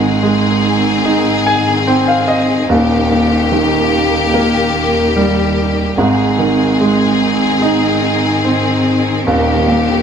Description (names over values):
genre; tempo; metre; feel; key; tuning
pop ballad; 73 BPM; 4/4; straight; unclear; A4 = 440 Hz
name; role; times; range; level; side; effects
warm grand piano; accompaniment; 0.0-10.0 s; Eb1 to Ab5; -13 LUFS; right 2 dB; none
warm studio string section; sustained chords; 0.0-10.0 s; Eb2 to Ab4; -15 LUFS; left 3 dB; none
room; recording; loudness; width
moderate plate reverb, RT60 2.8 s; none; -11 LUFS; side -7 dB against mid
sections
0.0-10.0 A section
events
grand piano fill 1.0-2.7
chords
0.0 Ab; 2.7 Eb; 6.0 Ab; 9.3 Eb